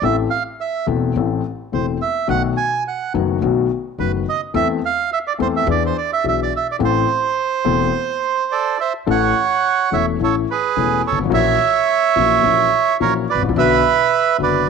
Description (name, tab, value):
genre	tango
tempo	106 BPM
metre	4/4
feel	rubato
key	A minor, A major from 9.1 s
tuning	A4 = 440 Hz
part	bandoneon	melody	0.0-14.7 s	G#4 to G#5	-17 LUFS	right 8 dB	none
part	dark grand piano	accompaniment	0.0-14.7 s	E1 to A4	-20 LUFS	left 10 dB	none
part	upright bass	bass	0.0-14.6 s	E1 to E2	-26 LUFS	right 1 dB	none
room	wet spring reverb, RT60 1.5 s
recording	1960s-style stereo with parts hard left and right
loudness	-16 LUFS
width	side -5 dB against mid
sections	0.0-9.1 A section; 9.1-14.7 B section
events	stop 7.9-9.1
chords	0.0 Am; 2.3 B7; 4.5 Am/E; 5.7 E7; 6.8 Am; 9.1 A; 11.3 F#7/A#; 13.6 Bm